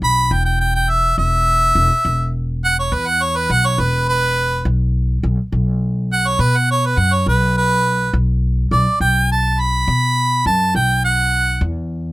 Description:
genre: acoustic country blues, solo or duo.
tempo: 69 BPM (dotted quarters).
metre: 12/8.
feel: straight.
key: unclear.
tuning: A4 = 440 Hz.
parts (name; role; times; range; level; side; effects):
clear harmonica; melody; 0.0-11.6 s; B4 to B5; -16 LUFS; right 1 dB; none.
upright bass; bass; 0.0-12.1 s; E1 to B2; -18 LUFS; equal; none.
room: little or no reverb.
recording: close, detailed microphones.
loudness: -14 LUFS.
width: side -18 dB against mid.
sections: 0.0-12.1 A section.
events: harmonica solo 0.0-12.1.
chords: 0.0 E5; 4.7 B5; 11.6 E5.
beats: 0.31 | 1.18 2.05 2.92 3.79 | 4.66 5.52 6.39 7.26 | 8.13 9.00 9.87 10.74 | 11.61.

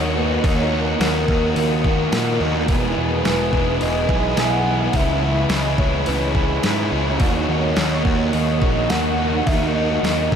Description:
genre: rock, shoegaze and dream pop.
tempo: 106 BPM.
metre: 4/4.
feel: straight.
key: unclear.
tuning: A4 = 440 Hz.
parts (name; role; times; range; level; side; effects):
warm velvety synth lead; melody; 0.0-10.4 s; A#4 to F#5; -26 LUFS; equal; chorus, analog delay.
ensemble organ-string; sustained chords; 0.0-10.4 s; E4 to D#6; -29 LUFS; equal; ensemble chorus.
overdriven electric guitar; riff; 0.0-10.4 s; E2 to F#4; -24 LUFS; left 8 dB; wide subtle chorus.
raw garage guitar; riff; 0.0-10.4 s; E2 to G#4; -24 LUFS; right 8 dB; overdrive, reverse reverb.
fuzz picked electric bass; bass; 0.0-10.4 s; E1 to A#2; -22 LUFS; equal; overdrive.
detuned 8-bit digital drum machine; drums; 0.4-10.4 s; hi-hat, kick drum, snare drum; -23 LUFS; equal; none.
room: moderate huge ambient reverb, RT60 8.5 s.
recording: dreamy mix soaked in reverb.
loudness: -17 LUFS.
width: side -7 dB against mid.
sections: 0.0-10.4 A section.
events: none.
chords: 0.0 D#m7; 2.7 Emaj7; 4.9 C#m7; 7.2 D#m7.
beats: | 0.43 0.99 1.55 2.12 | 2.68 3.24 3.81 4.37 | 4.93 5.50 6.07 6.63 | 7.20 7.76 8.33 8.89 | 9.46 10.03.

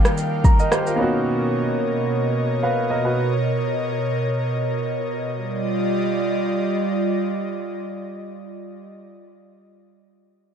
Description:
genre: amapiano.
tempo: free time.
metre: none.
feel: none.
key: unclear.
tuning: A4 = 439 Hz.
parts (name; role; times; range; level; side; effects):
clear grand piano; accompaniment; 0.0-3.3 s; G3 to Bb5; -22 LUFS; right 2 dB; none.
airy breathy pad; sustained chords; 0.0-8.9 s; B2 to G5; -22 LUFS; equal; chorus, sidechain pumping.
downlifter; sound effects; 0.0-1.0 s; none; -43 LUFS; equal; none.
deep house drum kit; drums; 0.1-1.0 s; kick drum, rim click, shaker; -16 LUFS; equal; overdrive, vintage 12-bit sampler grit.
room: light reverb.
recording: dark, warm production.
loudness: -20 LUFS.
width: side -7 dB against mid.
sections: 0.0-5.4 A section; 5.4-9.7 B section.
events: grand piano fill 0.2-1.0.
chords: 0.0 Ebmaj9; 1.0 Bmaj9; 5.4 Ebmaj9.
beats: free time.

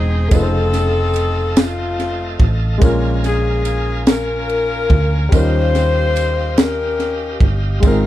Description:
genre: slow gospel.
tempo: 48 BPM (dotted quarters).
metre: 6/8.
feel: straight.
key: unclear.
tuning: A4 = 439 Hz.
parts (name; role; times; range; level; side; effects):
clear saxophone section; melody; 0.0-7.8 s; A3 to C5; -20 LUFS; left 4 dB; none.
warm baby grand piano; accompaniment; 0.0-8.1 s; Ab2 to G5; -23 LUFS; left 1 dB; none.
bright tonewheel organ; sustained chords; 0.0-8.1 s; Ab3 to Bb5; -29 LUFS; right 4 dB; slow rotary speaker, overdrive.
hollow-body short-scale fingered electric bass; bass; 0.0-8.1 s; Fb1 to Eb2; -18 LUFS; right 1 dB; none.
crisp fusion drum kit; drums; 0.3-8.0 s; kick drum, ride cymbal, snare drum; -15 LUFS; equal; none.
tambourine; percussion; 0.3-8.1 s; none; -35 LUFS; right 27 dB; none.
room: little or no reverb.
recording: none.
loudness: -14 LUFS.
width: side -14 dB against mid.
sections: 0.0-8.1 A section.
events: none.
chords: 0.3 F7b13; 2.8 Bbm7; 5.3 Eb9.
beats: | 0.32 1.57 | 2.82 4.07 | 5.32 6.57 | 7.83.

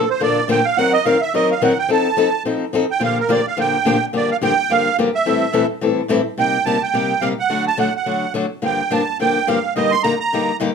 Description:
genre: jazz.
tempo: 214 BPM.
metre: 4/4.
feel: swing 56% on 8ths.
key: Bb major, G minor from 4.1 s.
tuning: A4 = 440 Hz.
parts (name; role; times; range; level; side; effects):
musette accordion; melody; 0.0-10.6 s; Bb4 to C6; -18 LUFS; right 7 dB; none.
picked old ladder-braced acoustic guitar; accompaniment; 0.0-10.7 s; G2 to Bb4; -18 LUFS; left 4 dB; none.
room: moderate club reverb, RT60 0.6 s.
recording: none.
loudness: -15 LUFS.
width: side -6 dB against mid.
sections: 0.0-4.1 A section; 4.1-10.7 B section.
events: accordion solo 0.0-4.1.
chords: 0.0 Bbmaj7; 0.8 Ebm6; 1.9 F7; 3.0 Bb6; 4.1 Gm7; 5.3 Am7; 6.4 Cm7; 7.5 D; 8.6 Gm7; 9.7 Ebmaj7/G.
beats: 0.21 0.49 | 0.78 1.05 1.33 1.62 | 1.90 2.18 2.46 2.74 | 3.02 3.30 3.58 3.86 | 4.14 4.42 4.70 4.98 | 5.26 5.54 5.82 6.10 | 6.38 6.66 6.94 7.22 | 7.50 7.78 8.06 8.34 | 8.62 8.90 9.19 9.47 | 9.75 10.03 10.31 10.59.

